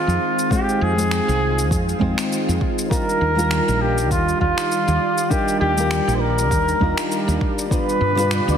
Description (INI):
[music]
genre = sunset chillout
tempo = 100 BPM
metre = 4/4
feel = swing 56% on 16ths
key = unclear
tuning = A4 = 443 Hz
[part]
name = warm flugelhorn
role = melody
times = 0.0-8.6 s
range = F4 to C5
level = -22 LUFS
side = equal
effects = digital delay
[part]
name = nylon-string guitar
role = accompaniment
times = 0.0-8.6 s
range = G3 to C5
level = -24 LUFS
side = equal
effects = auto-pan, tape echo
[part]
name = soft string machine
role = sustained chords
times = 0.0-8.6 s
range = B2 to D5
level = -27 LUFS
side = equal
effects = ensemble chorus
[part]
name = woody fretless electric bass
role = bass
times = 0.1-8.6 s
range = Bb1 to G2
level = -22 LUFS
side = equal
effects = analog chorus
[part]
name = electronic shaker and finger snaps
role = drums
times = 0.1-8.6 s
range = none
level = -29 LUFS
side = left 1 dB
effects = overdrive
[part]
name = electronic kick drum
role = drums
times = 0.5-7.8 s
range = none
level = -23 LUFS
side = equal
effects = overdrive
[part]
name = wind-like tuned noise texture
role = texture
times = 7.9-8.6 s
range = D4 to D5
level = -30 LUFS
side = left 1 dB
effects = built-in reverb
[sound]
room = moderate scoring stage reverb, RT60 2.2 s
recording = heavily compressed radio sound, multiband compression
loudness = -17 LUFS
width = side -8 dB against mid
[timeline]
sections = 0.0-8.6 A section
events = none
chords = 0.0 Fm7; 2.9 Ebmaj9; 7.7 G7